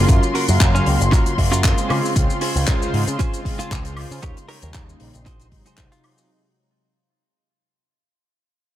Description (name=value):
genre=nu-disco, nu disco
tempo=116 BPM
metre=4/4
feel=swing 54% on 16ths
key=Db major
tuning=A4 = 440 Hz
part: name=warm analog pad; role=accompaniment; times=0.0-6.3 s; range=C3 to F5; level=-24 LUFS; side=equal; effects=chorus, sidechain pumping, digital delay
part: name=muted studio string section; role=sustained chords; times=0.0-6.3 s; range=C6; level=-28 LUFS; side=left 2 dB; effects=sidechain pumping
part: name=direct-recorded clean electric guitar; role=riff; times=0.0-6.2 s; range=Db4 to Db5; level=-27 LUFS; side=right 4 dB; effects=wide subtle chorus, digital delay
part: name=picked electric bass with an envelope filter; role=bass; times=0.0-5.9 s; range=Gb1 to Db3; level=-20 LUFS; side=equal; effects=tube saturation, sidechain pumping
part: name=damped 70s drum kit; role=drums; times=0.1-6.3 s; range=handclaps, hi-hat, shaker, woodblock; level=-25 LUFS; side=left 2 dB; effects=none
part: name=electronic kick drum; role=drums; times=0.1-5.9 s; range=none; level=-18 LUFS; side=equal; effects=none
part: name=direct-recorded clean electric guitar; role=melody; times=0.7-6.3 s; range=Db4 to Bb4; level=-30 LUFS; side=equal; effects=dub echo
room=light reverb, small room ambience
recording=none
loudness=-16 LUFS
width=side -13 dB against mid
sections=0.0-6.3 A section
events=drop 0.0-6.3; fade-out 0.0-6.3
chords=0.0 Gbmaj7; 1.9 Dbmaj7; 4.2 Eb7; 5.3 Ab7